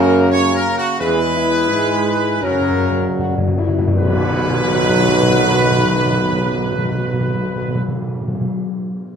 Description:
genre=classical, ceremonial fanfare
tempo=74-95 BPM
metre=4/4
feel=straight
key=unclear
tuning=A4 = 440 Hz
part: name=clear trumpet section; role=melody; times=0.0-7.8 s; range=F#4 to C#5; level=-20 LUFS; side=equal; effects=none
part: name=bright trombone section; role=sustained chords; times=0.0-7.8 s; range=F#2 to A#3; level=-23 LUFS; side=right 3 dB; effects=none
part: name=mellow French horn section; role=sustained chords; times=0.0-7.8 s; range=B3 to G#4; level=-22 LUFS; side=left 5 dB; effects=none
part: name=mellow tuba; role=bass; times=0.0-7.8 s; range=B1 to G#2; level=-20 LUFS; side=right 3 dB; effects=none
part: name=timpani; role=percussion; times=2.4-8.5 s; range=F#2 to B2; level=-20 LUFS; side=left 1 dB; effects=none
part: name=tam-tam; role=percussion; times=4.0-8.5 s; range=none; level=-27 LUFS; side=left 2 dB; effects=none
room=wet recital hall reverb, RT60 1.5 s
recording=none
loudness=-14 LUFS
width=side -7 dB against mid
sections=0.0-4.0 A section; 4.0-7.0 B section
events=slowing down 0.0-4.0; timpani fill 2.4-4.0; band accent 4.0-4.7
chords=0.0 F#; 1.0 E; 2.4 F#; 4.0 B

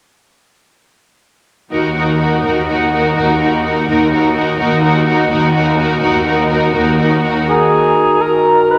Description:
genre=classical, dramatic, fast romantic movement for symphony orchestra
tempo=83 BPM (dotted quarters)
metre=6/8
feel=straight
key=Eb minor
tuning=A4 = 440 Hz
part: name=clear symphonic violin section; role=melody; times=1.7-7.5 s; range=Bb4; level=-22 LUFS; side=equal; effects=none
part: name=rich symphonic violin section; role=second line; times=1.7-7.5 s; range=Gb4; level=-21 LUFS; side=equal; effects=none
part: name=rich symphonic viola section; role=accompaniment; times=1.7-7.5 s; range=Eb4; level=-20 LUFS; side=equal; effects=none
part: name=rich studio cello section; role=bass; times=1.7-7.4 s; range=Eb2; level=-24 LUFS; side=equal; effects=none
part: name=rich symphonic double bass section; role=bass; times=1.7-7.4 s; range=Eb2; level=-21 LUFS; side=equal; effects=none
part: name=mellow clarinet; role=second line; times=7.5-8.8 s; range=Gb4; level=-22 LUFS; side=equal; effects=none
part: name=mellow cor anglais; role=second line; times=7.5-8.8 s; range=Ab4 to Cb5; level=-16 LUFS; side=equal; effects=none
part: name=mellow hollow silver concert flute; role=second line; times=7.5-8.8 s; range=Bb5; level=-19 LUFS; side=equal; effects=none
part: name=dark bassoon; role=accompaniment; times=7.5-8.8 s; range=Eb3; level=-18 LUFS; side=equal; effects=none
room=wet concert hall reverb, RT60 2.3 s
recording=none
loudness=-14 LUFS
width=mono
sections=1.7-7.5 A section; 7.5-8.8 B section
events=none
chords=1.7 Ebm

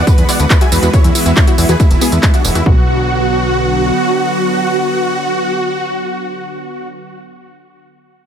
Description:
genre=uplifting trance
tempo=139 BPM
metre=4/4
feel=straight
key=B dorian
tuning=A4 = 442 Hz
part: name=dense compressed supersaw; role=melody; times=0.0-6.9 s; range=D4 to G#5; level=-17 LUFS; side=equal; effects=sidechain pumping, tape echo
part: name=lush unison pad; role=sustained chords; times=0.0-6.9 s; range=D3 to F#4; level=-19 LUFS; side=right 1 dB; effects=chorus, sidechain pumping
part: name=plucky analog bass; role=bass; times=0.0-3.9 s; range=E1 to E2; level=-15 LUFS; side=equal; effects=tube saturation, sidechain pumping
part: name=wide unison pluck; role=arpeggios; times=0.1-2.9 s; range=G#3 to E5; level=-23 LUFS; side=left 4 dB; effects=none
part: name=electronic kick drum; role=drums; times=0.1-2.7 s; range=none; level=-11 LUFS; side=equal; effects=none
part: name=techno drum kit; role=drums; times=0.1-2.6 s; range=handclaps, hi-hat, tambourine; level=-18 LUFS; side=right 1 dB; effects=sidechain pumping on hats, sidechain pumping on perc
room=light reverb, digital ambience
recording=none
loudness=-10 LUFS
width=side -8 dB against mid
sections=0.0-2.7 A section; 2.7-6.1 B section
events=drop 0.0-2.7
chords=0.0 Eadd9; 2.7 Bm

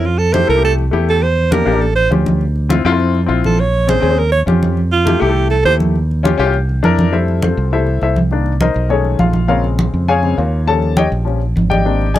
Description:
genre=Afro-Cuban jazz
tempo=203 BPM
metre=4/4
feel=straight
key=unclear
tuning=A4 = 440 Hz
part: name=clear alto saxophone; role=melody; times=0.0-5.7 s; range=F4 to Db5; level=-15 LUFS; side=right 4 dB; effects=none
part: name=warm baby grand piano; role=accompaniment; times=0.0-12.2 s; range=Db3 to A5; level=-17 LUFS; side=left 6 dB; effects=none
part: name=fingered electric bass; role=bass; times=0.0-12.2 s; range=Ab1 to F2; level=-16 LUFS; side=right 1 dB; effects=none
part: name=congas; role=percussion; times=0.1-12.2 s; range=none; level=-19 LUFS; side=right 1 dB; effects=none
room=little or no reverb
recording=dry, close 1970s-style studio recording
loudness=-12 LUFS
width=side -13 dB against mid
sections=0.0-7.1 A section; 7.1-12.2 A section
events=alto saxophone solo 0.0-7.1; grand piano solo 7.1-12.2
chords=0.0 Fmaj9; 1.2 Em7b5; 1.8 Aaug7; 2.4 Dm9; 3.6 Bbm7; 4.2 Eb9; 4.8 Fmaj9; 6.0 Eb9; 6.5 C7; 7.1 Fmaj7; 8.3 Cm7; 8.9 B13; 9.5 Bbm7; 10.7 Eb7

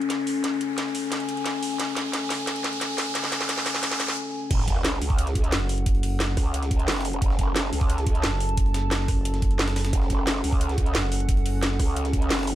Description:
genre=dark technical drum and bass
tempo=177 BPM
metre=4/4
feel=straight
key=F# minor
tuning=A4 = 440 Hz
part: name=dark analog pad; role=sustained chords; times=0.0-12.6 s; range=C#4 to A5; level=-30 LUFS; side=left 3 dB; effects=lush chorus, sidechain pumping
part: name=drum and bass drum kit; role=drums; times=0.0-12.5 s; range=crash cymbal, hi-hat, rim click, snare drum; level=-28 LUFS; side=equal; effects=high-pass filter on hats, high-pass filter on snare, high-pass filter on cymbals, high-pass filter on room
part: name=riser and sub drop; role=sound effects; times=0.0-5.9 s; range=none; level=-32 LUFS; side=right 1 dB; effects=none
part: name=growl bass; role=bass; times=4.5-12.6 s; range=F#1 to C#2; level=-27 LUFS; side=right 1 dB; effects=chorus, overdrive
part: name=breakbeat sampler-style drum kit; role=drums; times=4.5-12.6 s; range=hi-hat, snare drum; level=-38 LUFS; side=equal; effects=none
part: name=electronic kick drum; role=drums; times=4.5-12.2 s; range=none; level=-23 LUFS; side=right 1 dB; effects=none
part: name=growling FM bass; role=bass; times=5.5-11.8 s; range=F#1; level=-25 LUFS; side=right 1 dB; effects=tube saturation
room=light reverb, digital ambience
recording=none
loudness=-22 LUFS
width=side -13 dB against mid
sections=0.0-4.5 A section; 4.5-12.6 B section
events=build-up 0.0-4.5; drum fill 0.0-4.2; riser 0.0-4.2; break 4.2-4.5; drop 4.5-12.6; impact 4.5-5.9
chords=0.0 F#m (rootless); 4.5 F#m

